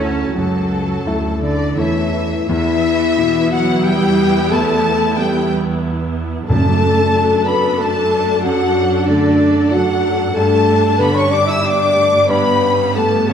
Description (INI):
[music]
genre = cinematic, emotional film score for orchestra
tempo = 83-95 BPM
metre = 3/4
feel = rubato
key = unclear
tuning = A4 = 439 Hz
[part]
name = warm studio violin section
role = melody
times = 0.0-13.3 s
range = C#5 to E6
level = -26 LUFS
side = left 4 dB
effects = none
[part]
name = rich studio violin section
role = second line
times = 0.0-13.3 s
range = F#4 to E6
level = -24 LUFS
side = left 3 dB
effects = none
[part]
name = silver concert flute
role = second line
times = 0.0-13.3 s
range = F#4 to E6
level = -25 LUFS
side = left 1 dB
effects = none
[part]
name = clear grand piano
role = accompaniment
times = 0.0-13.3 s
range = E2 to E5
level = -22 LUFS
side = left 2 dB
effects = none
[part]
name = dark studio viola section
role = accompaniment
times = 0.0-13.3 s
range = A3 to A4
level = -23 LUFS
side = right 2 dB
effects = none
[part]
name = warm studio cello section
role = bass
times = 0.0-13.3 s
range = C#3 to E4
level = -22 LUFS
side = right 3 dB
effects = none
[part]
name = warm studio double bass section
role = bass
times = 0.0-13.3 s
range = C#2 to G2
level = -23 LUFS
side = right 5 dB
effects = none
[part]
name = mellow French horn section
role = sustained chords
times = 1.4-13.3 s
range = C#4 to E5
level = -16 LUFS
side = left 3 dB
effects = none
[part]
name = timpani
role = percussion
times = 6.5-7.4 s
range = F#2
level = -20 LUFS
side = right 1 dB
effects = none
[sound]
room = wet scoring stage reverb, RT60 1.6 s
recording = none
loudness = -13 LUFS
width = side -8 dB against mid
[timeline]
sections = 0.0-2.5 A section; 2.5-13.3 B section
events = none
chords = 0.0 F#m7; 2.5 Em; 6.5 D/F#; 10.4 Gadd9